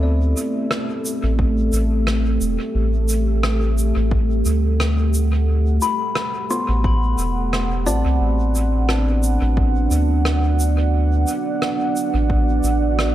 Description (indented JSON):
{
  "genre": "ambient dub",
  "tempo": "88 BPM",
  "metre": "4/4",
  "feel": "swing 56% on 16ths",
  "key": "A dorian",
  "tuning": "A4 = 441 Hz",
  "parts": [
    { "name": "deep dark ambient pad", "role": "sustained chords", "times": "0.0-13.1 s", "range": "A3 to F#5", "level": "-23 LUFS", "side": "right 2 dB", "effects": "chorus, built-in reverb" },
    { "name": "kalimba", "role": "arpeggios", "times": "0.0-1.4, 5.8-9.6 s", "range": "B3 to C6", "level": "-26 LUFS", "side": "left 2 dB", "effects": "tape echo" },
    { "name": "round analog bass", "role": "bass", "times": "0.0-13.1 s", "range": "E1 to D2", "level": "-18 LUFS", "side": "equal", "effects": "none" },
    { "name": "shaker and rim click", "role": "drums", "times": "0.4-13.1 s", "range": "none", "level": "-26 LUFS", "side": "right 1 dB", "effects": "dub echo" },
    { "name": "electronic kick drum", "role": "drums", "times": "1.4-12.4 s", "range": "none", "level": "-22 LUFS", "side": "equal", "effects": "overdrive" }
  ],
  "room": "light reverb, small room ambience",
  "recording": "none",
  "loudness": "-17 LUFS",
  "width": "side -13 dB against mid",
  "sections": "0.0-13.1 A section",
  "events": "none",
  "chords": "0.0 Am9; 8.2 Bm"
}